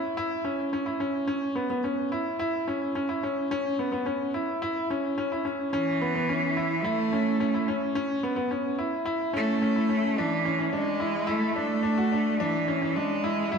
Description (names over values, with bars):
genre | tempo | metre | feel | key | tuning
electronica | 108 BPM | 4/4 | straight | unclear | A4 = 440 Hz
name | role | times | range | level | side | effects
bright upright piano | riff | 0.0-13.6 s | B3 to F#4 | -27 LUFS | equal | tape echo
clear cello | melody | 5.7-13.6 s | E3 to A3 | -26 LUFS | right 1 dB | none
room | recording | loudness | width
wet concert hall reverb, RT60 1.8 s | none | -25 LUFS | side -6 dB against mid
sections
0.0-13.6 A section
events
none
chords
0.0 Bsus4 (rootless); 10.2 Dsus2